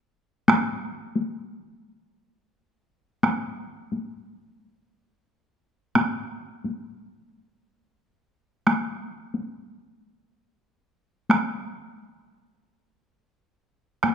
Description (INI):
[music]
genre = japanese traditional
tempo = free time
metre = none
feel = none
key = none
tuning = none
[part]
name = taiko ensemble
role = percussion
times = 0.5-14.1 s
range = none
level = -22 LUFS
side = equal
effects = none
[sound]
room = moderate recital hall reverb, RT60 1.6 s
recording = minimal, uncompressed stereo recording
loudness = -24 LUFS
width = side -8 dB against mid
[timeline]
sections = 0.0-3.2 A section; 3.2-14.1 A section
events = none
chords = none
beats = free time